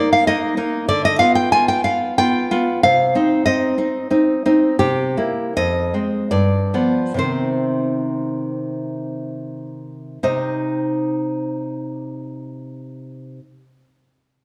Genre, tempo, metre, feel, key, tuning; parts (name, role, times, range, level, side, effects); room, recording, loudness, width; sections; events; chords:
romantic piece for solo classical guitar; 53-100 BPM; 3/4; rubato; C minor; A4 = 440 Hz
nylon-string guitar; solo; 0.0-13.4 s; F2 to Ab5; -19 LUFS; equal
wet recital hall reverb, RT60 1.8 s; dark, warm production; -19 LUFS; mono
0.0-10.2 A section; 10.2-14.4 B section
slowing down 3.8-10.2
0.0 Eb5; 0.9 G7/D; 2.8 Cm; 4.8 C7; 5.6 Fm; 6.3 G7; 7.2 Cm